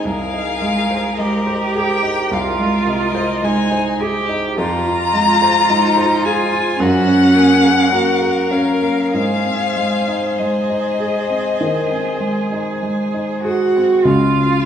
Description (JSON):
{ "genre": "classical, slow romantic movement for piano quartet", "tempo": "47-54 BPM", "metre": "4/4", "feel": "rubato", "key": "Ab major", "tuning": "A4 = 440 Hz", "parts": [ { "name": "warm violin", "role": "melody", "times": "0.0-14.7 s", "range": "Eb5 to Bb5", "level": "-20 LUFS", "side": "left 4 dB", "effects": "none" }, { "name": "rich violin", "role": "second line", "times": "0.0-13.8 s", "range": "Eb4 to C5", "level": "-24 LUFS", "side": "left 2 dB", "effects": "none" }, { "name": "warm cello", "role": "second line", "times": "0.0-14.7 s", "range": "Db4 to Bb4", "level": "-19 LUFS", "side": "right 3 dB", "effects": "none" }, { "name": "warm baby grand piano", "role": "accompaniment", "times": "0.0-14.7 s", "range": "C2 to C5", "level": "-19 LUFS", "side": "equal", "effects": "none" } ], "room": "wet recital hall reverb, RT60 1.7 s", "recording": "heard from further back in the room, nothing above 10.3 kHz", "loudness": "-14 LUFS", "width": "side -9 dB against mid", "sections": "0.0-14.0 A section", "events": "none", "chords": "0.1 Ab/C; 4.6 Fm; 6.8 Gb; 9.1 Ab; 14.0 Db", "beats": "| 0.06 1.20 2.32 3.45 | 4.58 5.70 6.80 7.92 | 9.14 10.39 11.60 12.82 | 14.04" }